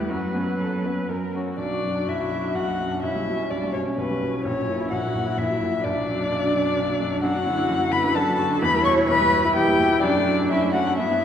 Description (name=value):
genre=quick classical-period movement for piano quartet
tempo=128 BPM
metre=3/4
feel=rubato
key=B minor, D major from 7.2 s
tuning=A4 = 439 Hz
part: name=muted violin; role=melody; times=0.0-11.2 s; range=F#4 to C#6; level=-24 LUFS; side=left 5 dB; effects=none
part: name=muted cello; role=second line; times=0.0-11.2 s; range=F#3 to C#5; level=-28 LUFS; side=right 3 dB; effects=none
part: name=bright baby grand piano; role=accompaniment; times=0.0-11.2 s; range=A#1 to C#5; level=-25 LUFS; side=equal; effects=none
part: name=muted viola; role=accompaniment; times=0.0-11.2 s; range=B3 to B4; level=-30 LUFS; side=equal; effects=none
room=wet concert hall reverb, RT60 2.5 s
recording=recorded in a church or concert hall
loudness=-20 LUFS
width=side -9 dB against mid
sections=0.0-1.6 A section; 1.6-11.2 B section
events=none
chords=0.1 F#sus4; 1.1 F#; 1.6 Bm; 3.0 C#m7b5/B; 4.5 F#7/A#; 5.8 Bm; 7.2 D/F#; 8.6 Em; 10.0 D/F#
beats=| 0.09 0.59 1.09 | 1.59 2.08 2.55 | 3.03 3.51 3.98 | 4.45 4.92 5.38 | 5.85 6.31 6.77 | 7.23 7.69 8.15 | 8.62 9.09 9.56 | 10.03 10.51 10.99